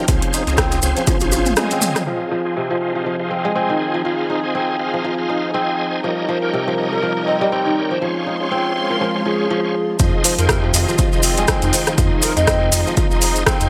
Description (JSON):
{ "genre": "afro house", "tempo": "121 BPM", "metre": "4/4", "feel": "swing 57% on 16ths", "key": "F minor", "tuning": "A4 = 440 Hz", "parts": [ { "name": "kora", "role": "arpeggios", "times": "0.0-13.7 s", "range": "C3 to F4", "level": "-24 LUFS", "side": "equal", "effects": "sidechain pumping, low-pass filter, tape echo" }, { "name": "bright tonewheel organ", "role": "stabs", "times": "0.0-13.7 s", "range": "C4 to Ab5", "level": "-26 LUFS", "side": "equal", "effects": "overdrive, chorus vibrato, fast rotary speaker, sidechain pumping, low-pass filter, tape echo" }, { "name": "round analog bass", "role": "bass", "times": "0.1-1.5, 10.0-13.7 s", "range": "F1 to F2", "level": "-23 LUFS", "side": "equal", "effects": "sidechain pumping" }, { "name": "deep house drum kit", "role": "drums", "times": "0.1-2.0, 10.0-13.7 s", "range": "hi-hat, rim click, toms", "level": "-23 LUFS", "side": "equal", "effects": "overdrive, low-pass filter on hats, low-pass filter on snare, low-pass filter on toms" }, { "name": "electronic kick drum", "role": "drums", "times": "0.1-1.2, 10.0-13.6 s", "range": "none", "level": "-22 LUFS", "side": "equal", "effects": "overdrive" }, { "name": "maracas", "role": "percussion", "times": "0.1-2.0, 10.0-13.7 s", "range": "none", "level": "-26 LUFS", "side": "equal", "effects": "none" }, { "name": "dark studio string section", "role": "sustained chords", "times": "2.1-13.7 s", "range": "Eb3 to C6", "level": "-28 LUFS", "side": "equal", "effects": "sidechain pumping, low-pass filter" }, { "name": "polished pan flute", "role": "melody", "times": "6.3-12.9 s", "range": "Ab4 to Eb5", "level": "-27 LUFS", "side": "equal", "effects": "tape echo" } ], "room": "light reverb, small room reverb", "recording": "none", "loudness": "-18 LUFS", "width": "mono", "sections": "0.0-2.1 A section; 2.1-10.0 B section; 10.0-13.7 C section", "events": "drum fill 1.1-2.1; filter sweep on string section 2.1-10.0; drop 10.0-13.7", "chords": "0.1 Dbmaj7; 2.1 Fm7; 6.0 Eb7; 8.0 Dbmaj7; 10.0 Fm7" }